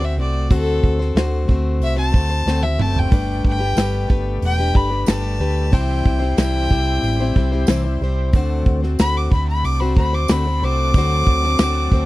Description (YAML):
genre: folk rock and heartland rock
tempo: 92 BPM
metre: 4/4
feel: straight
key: unclear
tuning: A4 = 441 Hz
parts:
  - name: clear fiddle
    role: melody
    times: 0.0-12.1 s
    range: A4 to D6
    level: -24 LUFS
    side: left 1 dB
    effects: none
  - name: picked plugged-in steel-string acoustic guitar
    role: accompaniment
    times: 0.0-12.1 s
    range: C3 to C5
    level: -23 LUFS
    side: left 4 dB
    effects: none
  - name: hollow-body short-scale fingered electric bass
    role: bass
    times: 0.0-12.1 s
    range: E1 to D2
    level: -20 LUFS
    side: right 1 dB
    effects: none
  - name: natural country drum kit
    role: drums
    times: 0.5-12.1 s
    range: hi-hat, kick drum, snare drum, toms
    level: -16 LUFS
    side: equal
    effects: none
  - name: bright tonewheel organ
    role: sustained chords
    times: 2.8-12.1 s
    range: F#3 to C5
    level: -34 LUFS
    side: right 1 dB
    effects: overdrive, chorus vibrato, slow rotary speaker
  - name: tambourine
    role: percussion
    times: 3.8-11.7 s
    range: none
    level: -35 LUFS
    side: right 26 dB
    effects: none
room: little or no reverb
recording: dry, close 1970s-style studio recording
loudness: -16 LUFS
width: side -18 dB against mid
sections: 0.0-12.1 A section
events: fiddle solo 0.0-12.1; drum fill 2.5-3.1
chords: 0.0 D7; 3.1 Gadd9; 5.7 C; 8.3 D7